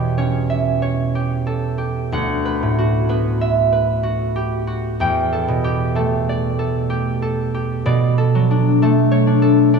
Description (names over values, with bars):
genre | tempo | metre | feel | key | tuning
classical, solo harp piece | 63 BPM | 3/4 | rubato | E dorian | A4 = 440 Hz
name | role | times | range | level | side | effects
concert harp | solo | 0.0-9.8 s | D2 to G5 | -16 LUFS | right 1 dB | none
room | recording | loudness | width
wet church reverb, RT60 3.7 s | none | -16 LUFS | side -5 dB against mid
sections
0.0-9.8 A section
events
none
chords
0.0 Em6; 2.1 D69; 5.0 Em11; 7.9 Bm9